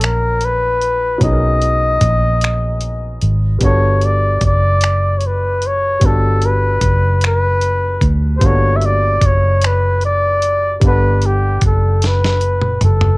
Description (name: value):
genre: slow six-eight R&B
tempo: 50 BPM (dotted quarters)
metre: 6/8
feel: straight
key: unclear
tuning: A4 = 439 Hz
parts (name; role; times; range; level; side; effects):
- warm flugelhorn; melody; 0.0-13.2 s; G4 to E5; -17 LUFS; left 1 dB; cassette tape, plate reverb
- warm baby grand piano; accompaniment; 0.0-13.2 s; F#3 to F#5; -25 LUFS; equal; cassette tape, plate reverb
- vintage muted fingered electric bass; bass; 0.0-13.2 s; F#1 to D2; -15 LUFS; equal; none
- dusty soul sampler-style drum kit; drums; 0.0-13.2 s; finger snaps, hi-hat, kick drum, snare drum, toms; -18 LUFS; equal; cassette tape
room: light reverb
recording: home recording on cassette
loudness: -12 LUFS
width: side -23 dB against mid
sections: 0.0-13.2 A section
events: drum fill 12.0-13.2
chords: 0.0 Bmaj9; 3.6 Gmaj9